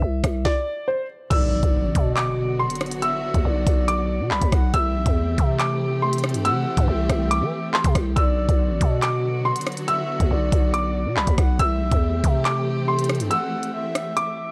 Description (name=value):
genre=hip hop, drill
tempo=140 BPM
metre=4/4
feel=half-time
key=B phrygian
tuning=A4 = 441 Hz
part: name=dark grand piano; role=melody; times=0.0-14.5 s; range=C5 to E6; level=-29 LUFS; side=equal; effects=none
part: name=growling 808-style bass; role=bass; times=0.0-13.3 s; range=A1 to E3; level=-26 LUFS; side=equal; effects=none
part: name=drill drum kit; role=drums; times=0.2-14.3 s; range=crash cymbal, handclaps, hi-hat, kick drum, rim click, snare drum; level=-24 LUFS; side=equal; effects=vintage 12-bit sampler grit
part: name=breathy flute-like synth lead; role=second line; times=1.3-14.5 s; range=D5 to F#5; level=-33 LUFS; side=equal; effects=chorus, digital delay
part: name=warm symphonic string section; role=sustained chords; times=1.3-14.5 s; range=D3 to G4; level=-33 LUFS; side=equal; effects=none
part: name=impact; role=sound effects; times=1.4-3.0 s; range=none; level=-35 LUFS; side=equal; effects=none
room=digital ambience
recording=none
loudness=-22 LUFS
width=mono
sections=0.0-1.3 A section; 1.3-14.5 B section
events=stop 0.5-1.3; impact 1.3-3.0; break 13.3-14.5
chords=0.0 C; 1.3 Bm; 4.7 C6; 8.2 Bm; 11.6 C6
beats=0.02 0.45 0.88 | 1.31 1.74 2.17 2.59 | 3.02 3.45 3.88 4.31 | 4.74 5.17 5.59 6.02 | 6.45 6.88 7.31 7.74 | 8.16 8.59 9.02 9.45 | 9.88 10.31 10.74 11.16 | 11.59 12.02 12.45 12.88 | 13.31 13.74 14.16